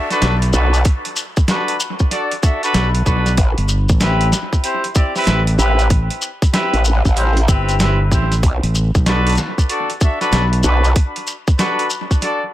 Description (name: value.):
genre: glitch hop.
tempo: 95 BPM.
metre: 4/4.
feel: swing 64% on 16ths.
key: B phrygian.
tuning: A4 = 440 Hz.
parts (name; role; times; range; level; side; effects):
clear horn section; stabs; 0.0-12.4 s; C4 to E5; -20 LUFS; left 1 dB; sidechain pumping, analog delay.
downlifter; sound effects; 0.0-3.4 s; none; -36 LUFS; equal; none.
boom bap sampler-style drum kit; drums; 0.1-12.4 s; hi-hat, snare drum; -23 LUFS; equal; analog delay.
shekere; percussion; 0.1-12.4 s; none; -25 LUFS; left 2 dB; none.
overdriven fingered electric bass; bass; 0.2-10.6 s; G1 to B1; -16 LUFS; equal; none.
growl bass; bass; 0.5-10.9 s; A1 to B1; -14 LUFS; equal; chorus.
electronic kick drum; drums; 0.9-12.2 s; none; -14 LUFS; equal; overdrive.
room: light reverb, digital ambience.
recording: echo-heavy mix.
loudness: -14 LUFS.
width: side -14 dB against mid.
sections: 0.0-12.5 A section.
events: none.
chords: 0.0 Bm7; 3.4 Am7; 8.4 Bm7.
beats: 0.22 | 0.85 1.48 2.12 2.75 | 3.38 4.01 4.64 5.27 | 5.90 6.54 7.17 7.80 | 8.43 9.06 9.69 10.32 | 10.96 11.59 12.22.